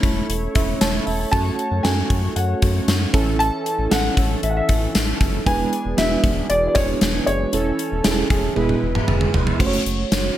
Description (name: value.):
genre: 1980s-style pop.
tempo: 116 BPM.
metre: 4/4.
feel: straight.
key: unclear.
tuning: A4 = 436 Hz.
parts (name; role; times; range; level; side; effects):
FM electric piano with tremolo; accompaniment; 0.0-10.4 s; G#3 to A5; -24 LUFS; right 5 dB; none.
analog synth brass; stabs; 0.0-9.6 s; E3 to C#5; -28 LUFS; left 2 dB; chorus.
round analog bass; bass; 0.0-10.3 s; E1 to F#2; -24 LUFS; equal; none.
gated 80s drum kit; drums; 0.0-10.2 s; crash cymbal, hi-hat, kick drum, snare drum, tambourine, toms; -20 LUFS; equal; none.
dark grand piano; melody; 1.3-9.3 s; G#4 to A5; -24 LUFS; left 1 dB; tape echo.
room: light reverb, small room ambience.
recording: none.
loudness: -17 LUFS.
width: side -12 dB against mid.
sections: 0.0-9.6 A section.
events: FM electric piano fill 0.3-1.3; drum fill 8.6-9.6.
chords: 0.0 A/E; 1.3 F#m; 3.1 A; 5.5 E7; 7.5 A/E; 8.6 E; 9.6 F#m.